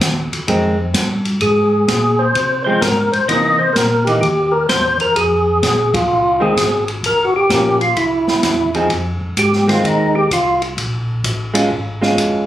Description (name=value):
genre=soul jazz organ trio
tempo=128 BPM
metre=4/4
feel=swing 66% on 8ths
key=F minor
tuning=A4 = 441 Hz
part: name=mellow tonewheel organ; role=bass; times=0.0-12.5 s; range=G1 to C3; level=-21 LUFS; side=equal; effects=chorus vibrato, slow rotary speaker
part: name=open jazz drum kit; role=drums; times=0.0-12.3 s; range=hi-hat, kick drum, ride cymbal, snare drum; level=-21 LUFS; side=left 1 dB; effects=none
part: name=vintage hollow-body jazz guitar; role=accompaniment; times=0.5-12.5 s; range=Eb3 to G#4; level=-17 LUFS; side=right 1 dB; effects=none
part: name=percussive tonewheel organ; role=melody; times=1.4-10.6 s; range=Eb4 to D#5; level=-14 LUFS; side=equal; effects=slow rotary speaker, chorus vibrato
room=moderate studio reverb, RT60 0.9 s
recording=recorded on a phone in the room, club reverb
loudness=-13 LUFS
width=side -12 dB against mid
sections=0.0-8.9 A section; 8.9-12.5 B section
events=band accent 5.9; tonewheel organ solo 8.9-12.5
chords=0.0 Fm7; 1.4 Abadd9; 3.3 C7#9; 5.2 Fm; 7.0 Gm7b5; 8.0 Caug; 8.9 Fm7; 10.8 Bbm7